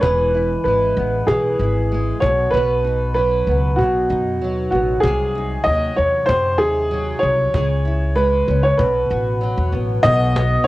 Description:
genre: acoustic pop.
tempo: 96 BPM.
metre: 4/4.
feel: straight.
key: unclear.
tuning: A4 = 440 Hz.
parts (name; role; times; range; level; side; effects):
warm upright piano; melody; 0.0-10.7 s; F#4 to D#5; -18 LUFS; equal; none.
flamenco guitar; accompaniment; 0.0-10.7 s; B2 to B4; -24 LUFS; equal; double-tracked left and right, cassette tape.
upright bass; bass; 0.0-10.6 s; E1 to F#2; -21 LUFS; equal; none.
cajon; drums; 0.0-10.5 s; none; -24 LUFS; equal; cassette tape.
room: light reverb, studio reverb.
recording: home recording on cassette.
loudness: -16 LUFS.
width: side -17 dB against mid.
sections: 0.0-10.0 A section.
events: none.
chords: 0.0 E; 2.2 B; 5.0 G#7/B#; 7.5 C#m; 8.8 Bsus4; 10.0 B.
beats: | 0.03 0.66 1.28 1.91 | 2.53 3.16 3.79 4.41 | 5.04 5.66 6.29 6.92 | 7.54 8.17 8.79 9.42 | 10.04 10.67.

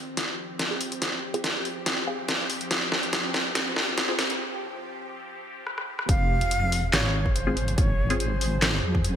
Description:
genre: deep dubstep.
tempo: 142 BPM.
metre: 4/4.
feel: swing 53% on 16ths, half-time.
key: F minor.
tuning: A4 = 440 Hz.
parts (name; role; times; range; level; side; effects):
bowed-like drone; sustained chords; 0.0-9.2 s; C3 to Ab4; -34 LUFS; equal; built-in reverb, phaser.
dubstep drum kit; drums; 0.2-9.1 s; handclaps, hi-hat, rim click, snare drum; -26 LUFS; equal; high-pass filter on hats, high-pass filter on snare, high-pass filter on room.
filtered dub chord stab; stabs; 0.7-4.2, 7.5-8.3 s; C4 to Ab4; -34 LUFS; left 1 dB; phaser, vintage 12-bit sampler grit, dub echo.
breathy bright shakuhachi; melody; 6.1-9.0 s; C5 to F5; -30 LUFS; right 1 dB; dub echo.
deep soft wobble bass; bass; 6.1-9.2 s; F1 to F2; -26 LUFS; equal; chorus.
electronic kick drum; drums; 6.1-9.0 s; none; -24 LUFS; equal; none.
room: moderate lush hall reverb, RT60 2.2 s.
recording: bright 1980s-style digital production, high-pass filter.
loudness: -23 LUFS.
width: side -9 dB against mid.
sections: 0.0-6.1 A section; 6.1-9.2 B section.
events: build-up 0.0-6.1; drum fill 0.0-4.4, 5.7-6.1; filter sweep on synth stab 0.0-6.1; filter sweep 0.0-6.1; break 4.4-6.1; drop 6.1-9.2.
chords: 0.0 F5; 6.1 Fm.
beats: 0.17 0.59 | 1.02 1.44 1.86 2.29 | 2.71 3.13 3.55 3.98 | 4.40 4.82 5.24 5.67 | 6.09 6.51 6.93 7.36 | 7.78 8.20 8.62 9.05.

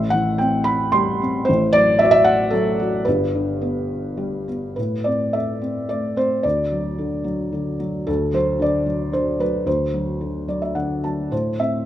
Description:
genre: classical, lyrical solo piano.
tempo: 98-120 BPM.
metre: 3/4.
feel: rubato.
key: A dorian.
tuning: A4 = 440 Hz.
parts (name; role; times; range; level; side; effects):
felt-muted upright piano; solo; 0.0-11.9 s; G1 to C6; -18 LUFS; equal; none.
room: moderate recital hall reverb, RT60 1.6 s.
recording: none.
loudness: -18 LUFS.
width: side -12 dB against mid.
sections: 0.0-4.8 A section; 4.8-11.9 B section.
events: felt piano fill 10.2-11.3.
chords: 0.0 Am7; 1.5 Am6; 3.1 G; 4.8 Am; 6.4 D; 11.3 Am.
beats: 0.39 0.93 | 1.48 2.01 2.52 | 3.05 3.60 4.18 | 4.78 5.35 5.90 | 6.45 6.99 7.54 | 8.08 8.61 9.13 | 9.66 10.20 10.76 | 11.32.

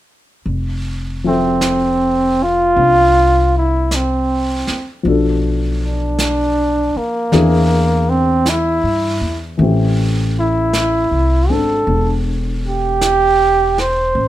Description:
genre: jazz ballad.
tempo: 53 BPM.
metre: 4/4.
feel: swing 68% on 8ths.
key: F major.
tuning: A4 = 440 Hz.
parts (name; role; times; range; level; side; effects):
upright bass; bass; 0.5-14.3 s; E1 to G2; -19 LUFS; equal; none.
vintage brush drum kit; drums; 0.5-14.3 s; brushed snare drum, hi-hat, snare drum; -26 LUFS; right 2 dB; none.
dark baby grand piano; accompaniment; 1.2-14.2 s; B2 to E5; -19 LUFS; left 3 dB; none.
breathy flugelhorn; melody; 1.3-14.3 s; Bb3 to C5; -15 LUFS; right 1 dB; none.
room: light reverb.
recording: none.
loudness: -13 LUFS.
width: side -13 dB against mid.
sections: 0.5-14.3 A section.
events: none.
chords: 0.5 Fmaj7; 5.0 Bm7b5; 7.3 E7alt; 9.6 Am7.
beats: | 0.46 1.62 2.77 3.91 | 5.05 6.18 7.32 8.45 | 9.59 10.73 11.87 13.01 | 14.15.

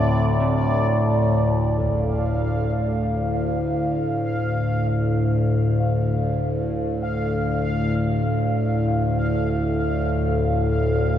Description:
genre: dark ambient drone.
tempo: free time.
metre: none.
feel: none.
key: D minor.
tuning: A4 = 439 Hz.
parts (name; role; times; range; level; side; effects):
dark detuned synth bell; arpeggios; 0.0-4.6 s; C4; -34 LUFS; right 1 dB; chorus, tape echo.
overtone-sweeping drone; drone; 0.0-11.2 s; D2 to A2; -20 LUFS; left 1 dB; chorus, built-in reverb.
bubbling stepped-filter texture; texture; 0.0-11.2 s; D5 to F5; -28 LUFS; right 2 dB; chorus, built-in reverb.
impact; percussion; 1.8-2.0 s; none; -39 LUFS; equal; none.
room: wet cathedral reverb, RT60 6.5 s.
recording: dark, warm production, nothing above 10.5 kHz.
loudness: -20 LUFS.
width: side -10 dB against mid.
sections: 0.0-1.8 A section; 1.8-11.2 B section.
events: none.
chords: 0.0 D5.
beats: free time.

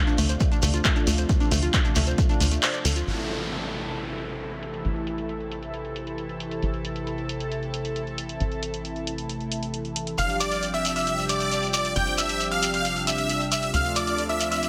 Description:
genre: uplifting trance.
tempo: 135 BPM.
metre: 4/4.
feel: straight.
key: A minor.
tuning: A4 = 440 Hz.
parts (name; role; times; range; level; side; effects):
analog string pad; sustained chords; 0.0-14.7 s; C3 to A4; -33 LUFS; equal; ensemble chorus, sidechain pumping.
analog pluck; arpeggios; 0.0-3.0 s; A3 to D5; -34 LUFS; equal; chorus, sidechain pumping, tape echo.
punchy analog drum machine; drums; 0.1-14.7 s; crash cymbal, handclaps, hi-hat; -32 LUFS; equal; low-pass filter on hats, low-pass filter on snare, low-pass filter on cymbals.
shekere; percussion; 0.1-3.0, 10.2-14.7 s; none; -34 LUFS; equal; none.
tight sequencer bass; bass; 0.2-14.7 s; G1 to D2; -33 LUFS; equal; sidechain pumping.
electronic kick drum; drums; 0.4-2.3 s; none; -25 LUFS; equal; none.
downlifter and riser; sound effects; 3.1-6.6, 14.6-14.7 s; none; -38 LUFS; equal; none.
big supersaw lead; melody; 10.2-14.7 s; D5 to G5; -28 LUFS; equal; phaser, sidechain pumping, tape echo.
bright grand piano; second line; 10.2-14.7 s; D6 to G6; -33 LUFS; equal; sidechain pumping.
room: light reverb, digital ambience.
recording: none.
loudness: -26 LUFS.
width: mono.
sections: 0.0-3.1 A section; 3.1-14.7 B section.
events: filter sweep on analog synth pad 0.0-3.1; kick drops out 2.6-3.1; band accent 2.6.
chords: 0.0 Dm7; 3.1 Am; 10.2 G7sus4; 13.7 Dm7.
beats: 0.40 0.85 | 1.29 1.74 2.18 2.63 | 3.07 3.52 3.96 4.40 | 4.85 5.29 5.74 6.18 | 6.63 7.07 7.52 7.96 | 8.40 8.85 9.29 9.74 | 10.18 10.63 11.07 11.52 | 11.96 12.40 12.85 13.29 | 13.74 14.18 14.63.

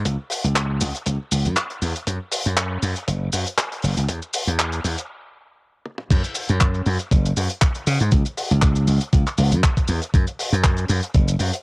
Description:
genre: nu-disco, nu disco.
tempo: 119 BPM.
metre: 4/4.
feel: swing 54% on 16ths.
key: unclear.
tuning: A4 = 439 Hz.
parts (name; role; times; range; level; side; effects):
slap bass; bass; 0.0-11.5 s; F#1 to C#3; -20 LUFS; equal; none.
damped 70s drum kit; drums; 0.1-11.6 s; crash cymbal, handclaps, hi-hat, shaker, toms; -24 LUFS; equal; high-pass filter on hats, cassette tape, high-pass filter on toms, high-pass filter on cymbals, high-pass filter on snare, high-pass filter on perc, high-pass filter on room.
electronic kick drum; drums; 0.1-11.3 s; none; -18 LUFS; equal; high-pass filter on kick, cassette tape, high-pass filter on room.
room: light reverb.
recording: home recording on cassette.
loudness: -18 LUFS.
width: side -28 dB against mid.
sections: 0.0-6.1 A section; 6.1-11.6 B section.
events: build-up 0.0-6.1; stop 5.1-6.1; drum fill 5.9; drop 6.1-11.6.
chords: none.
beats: | 0.05 0.56 1.06 1.57 | 2.07 2.58 3.08 3.58 | 4.09 4.59 5.10 5.60 | 6.10 6.61 7.11 7.62 | 8.12 8.62 9.13 9.63 | 10.14 10.64 11.15.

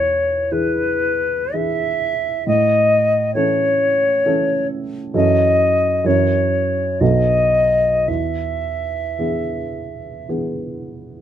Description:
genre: classical, romantic duo for flute and grand piano.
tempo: 52-68 BPM.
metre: 3/4.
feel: rubato.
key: E major.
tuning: A4 = 440 Hz.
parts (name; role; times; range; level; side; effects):
silver concert flute; melody; 0.0-10.3 s; B4 to E5; -17 LUFS; left 2 dB; none.
dark baby grand piano; accompaniment; 0.0-11.2 s; B1 to A#4; -21 LUFS; right 3 dB; none.
room: light reverb.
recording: close, detailed microphones.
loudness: -16 LUFS.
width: side -10 dB against mid.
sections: 0.0-11.2 A section.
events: none.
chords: 0.0 E; 2.5 A; 5.1 F#m7; 6.0 F#7; 7.0 B7; 8.1 E.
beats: 0.51 1.54 | 2.47 3.36 4.26 | 5.15 6.05 7.00 | 8.08 9.19 10.30.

